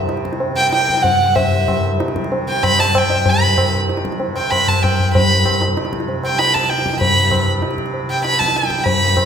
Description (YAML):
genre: indian classical, Hindustani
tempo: 192 BPM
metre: 3/4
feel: straight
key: C raga yaman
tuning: A4 = 442 Hz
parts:
  - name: tanpura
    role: drone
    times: 0.0-9.3 s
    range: C2 to C3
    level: -24 LUFS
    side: right 2 dB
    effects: none
  - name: tabla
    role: percussion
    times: 0.1-9.3 s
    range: none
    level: -18 LUFS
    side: left 1 dB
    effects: none
  - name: warm violin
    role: melody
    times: 0.6-9.3 s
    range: E5 to B5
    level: -16 LUFS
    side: right 1 dB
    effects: none
room: wet concert hall reverb, RT60 1.8 s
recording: recorded in a church or concert hall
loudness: -14 LUFS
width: side -7 dB against mid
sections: 0.0-3.3 A section; 3.3-9.3 B section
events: speeding up 0.0-9.3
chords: none